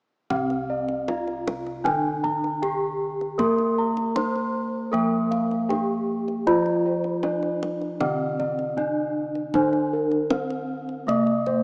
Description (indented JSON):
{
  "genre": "Javanese gamelan",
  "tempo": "78 BPM",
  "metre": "4/4",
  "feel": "straight",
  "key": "C slendro",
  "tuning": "A4 = 441 Hz",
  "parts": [
    { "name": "gamelan-type bronze metallophone", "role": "melody", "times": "0.3-11.6 s", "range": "Bb3-40c to C5", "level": "-31 LUFS", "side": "equal", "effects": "none" },
    { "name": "gamelan-type bronze metallophone", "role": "accompaniment", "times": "0.3-11.6 s", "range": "C3 to Bb3-40c", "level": "-30 LUFS", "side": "equal", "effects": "none" },
    { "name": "gamelan-type bossed gongs", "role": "arpeggios", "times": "0.3-11.6 s", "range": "Bb4-40c to C6", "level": "-30 LUFS", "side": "equal", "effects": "none" },
    { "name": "gamelan-type bossed gongs", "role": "bass", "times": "0.3-11.6 s", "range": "C2 to Bb4-40c", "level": "-31 LUFS", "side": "equal", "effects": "none" },
    { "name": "kendang", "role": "percussion", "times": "0.3-11.6 s", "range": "none", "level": "-34 LUFS", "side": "equal", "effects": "none" }
  ],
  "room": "wet plate reverb, RT60 3.5 s",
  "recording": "rough home demo mix, small speaker sound",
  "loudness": "-25 LUFS",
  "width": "mono",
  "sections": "0.3-11.6 A section",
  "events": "none",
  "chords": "none",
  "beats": "| 0.32 1.09 1.85 2.62 | 3.39 4.16 4.93 5.70 | 6.47 7.24 8.01 8.78 | 9.55 10.32 11.09"
}